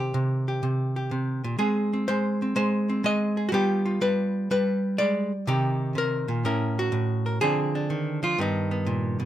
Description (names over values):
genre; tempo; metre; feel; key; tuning
solo jazz; 124 BPM; 4/4; swing 68% on 8ths; C minor; A4 = 441 Hz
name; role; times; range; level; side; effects
archtop guitar, miked and amplified; solo; 0.0-9.3 s; G2 to Eb5; -23 LUFS; equal; none
room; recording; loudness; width
little or no reverb; close, detailed microphones; -23 LUFS; side -12 dB against mid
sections
0.0-9.3 A section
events
none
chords
0.0 Cm; 1.6 Ab; 3.5 G7b9; 5.5 Cm7; 6.4 A; 7.4 Dm7b5; 8.4 Gaug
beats
0.13 0.61 1.10 | 1.58 2.07 2.55 3.04 | 3.52 4.01 4.50 4.98 | 5.46 5.95 6.43 6.92 | 7.41 7.89 8.37 8.86